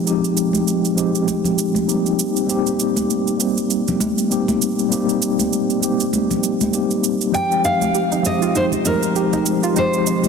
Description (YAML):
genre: sunset chillout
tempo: 99 BPM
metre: 4/4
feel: swing 57% on 16ths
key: F minor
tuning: A4 = 440 Hz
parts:
  - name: mellow tine electric piano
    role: accompaniment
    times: 0.0-10.3 s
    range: F3 to G4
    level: -18 LUFS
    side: moving between left 4 dB and right 3 dB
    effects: medium stereo tremolo, auto-pan, digital delay
  - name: shaker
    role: drums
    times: 0.1-10.3 s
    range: none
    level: -26 LUFS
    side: right 9 dB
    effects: none
  - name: congas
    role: percussion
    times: 0.5-10.3 s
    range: none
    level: -26 LUFS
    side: left 2 dB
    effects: none
  - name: nylon-string guitar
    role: melody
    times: 7.3-10.3 s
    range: Bb4 to G5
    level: -20 LUFS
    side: equal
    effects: digital delay
  - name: soft round pluck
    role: arpeggios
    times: 7.3-10.2 s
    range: Eb4 to G4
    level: -24 LUFS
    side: right 6 dB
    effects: chorus, digital delay
room: wet lush hall reverb, RT60 3.2 s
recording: dense, heavily limited modern master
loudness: -16 LUFS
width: side -6 dB against mid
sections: 0.0-10.3 A section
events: none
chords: 0.0 Fm9; 2.2 Cm7; 7.3 Fm9